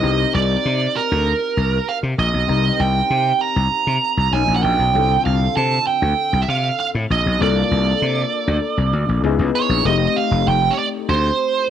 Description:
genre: polished 1980s jazz-funk pop.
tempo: 98 BPM.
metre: 4/4.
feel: straight.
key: C dorian.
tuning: A4 = 440 Hz.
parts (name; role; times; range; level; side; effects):
nasal lead guitar with a parked wah; melody; 0.0-11.7 s; Bb4 to Bb5; -19 LUFS; right 7 dB; overdrive, cassette tape.
warm concert grand piano; accompaniment; 0.0-11.7 s; D3 to Bb4; -24 LUFS; left 12 dB; ensemble chorus, cassette tape.
gritty slap bass; bass; 0.0-11.3 s; F1 to C3; -19 LUFS; left 2 dB; overdrive.
room: moderate booth ambience, RT60 0.2 s.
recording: home recording on cassette.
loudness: -16 LUFS.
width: side -9 dB against mid.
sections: 0.0-9.9 A section; 9.9-11.7 B section.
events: none.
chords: 0.0 Cm7; 4.3 Bmaj9; 4.9 Bbmaj9/C (rootless); 7.4 Bbmaj9; 9.2 Dbm9; 9.9 F9.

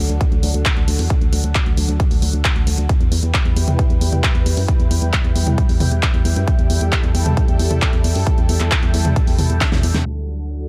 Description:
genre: uplifting trance.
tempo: 134 BPM.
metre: 4/4.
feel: straight.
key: unclear.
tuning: A4 = 440 Hz.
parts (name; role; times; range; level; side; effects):
lush unison pad; sustained chords; 0.0-10.7 s; F#3 to G5; -29 LUFS; equal; chorus, phaser, sidechain pumping.
solid FM bass; bass; 0.0-10.7 s; D2 to F#2; -21 LUFS; equal; sidechain pumping.
big-room dance drum kit; drums; 0.1-10.1 s; crash cymbal, handclaps, hi-hat, snare drum, toms; -25 LUFS; equal; low-pass filter on hats, low-pass filter on snare, low-pass filter on toms, low-pass filter on cymbals.
electronic kick drum; drums; 0.2-9.7 s; none; -19 LUFS; equal; none.
room: digital ambience.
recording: low-pass filter.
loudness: -17 LUFS.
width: mono.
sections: 0.0-10.1 A section.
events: filter sweep on analog synth pad 0.0-10.1; drum fill 9.6-10.1.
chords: 0.0 D; 2.9 Em; 10.1 D.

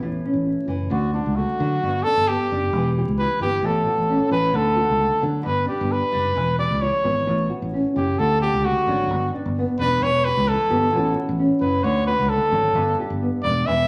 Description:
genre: highlife guitar band.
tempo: 132 BPM.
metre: 4/4.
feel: straight.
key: D major.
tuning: A4 = 440 Hz.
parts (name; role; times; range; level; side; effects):
nylon-string guitar; accompaniment; 0.0-13.9 s; G2 to G4; -28 LUFS; equal; none.
fingered electric bass; bass; 0.0-13.9 s; E1 to D3; -27 LUFS; equal; none.
clear trumpet; melody; 0.9-13.9 s; D4 to E5; -23 LUFS; equal; none.
room: wet large studio reverb, RT60 1.2 s.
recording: vinyl crackle, nothing above 11.0 kHz.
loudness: -21 LUFS.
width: mono.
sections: 0.9-13.9 A section.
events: trumpet solo 0.9-13.9.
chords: 0.0 A6; 0.9 D; 1.8 G; 2.7 Em; 3.6 A6; 4.6 D; 5.5 G; 6.4 Em; 7.3 A6; 8.2 D; 9.1 G; 10.0 Em; 10.9 A6; 11.8 D; 12.8 G.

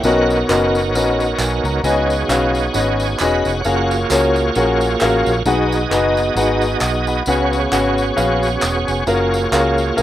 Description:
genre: uptempo gospel.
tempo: 133 BPM.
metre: 4/4.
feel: swing 57% on 8ths.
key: F# major.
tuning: A4 = 439 Hz.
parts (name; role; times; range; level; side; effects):
clear grand piano; accompaniment; 0.0-10.0 s; B2 to D#6; -18 LUFS; left 2 dB; none.
bright tonewheel organ; sustained chords; 0.0-10.0 s; A#3 to B5; -19 LUFS; right 2 dB; slow rotary speaker, chorus vibrato.
vintage muted fingered electric bass; bass; 0.0-10.0 s; E1 to C#2; -22 LUFS; right 1 dB; none.
tambourine and handclaps; percussion; 0.0-10.0 s; none; -26 LUFS; right 1 dB; none.
room: moderate studio reverb, RT60 0.6 s.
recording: rough home demo mix.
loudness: -14 LUFS.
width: side -12 dB against mid.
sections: 0.0-10.0 A section.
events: grand piano fill 6.4-7.3.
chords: 0.0 Bmaj9; 1.8 C#9sus4; 3.7 F#maj9; 5.5 B6; 7.3 C#7sus4; 9.1 F#maj9.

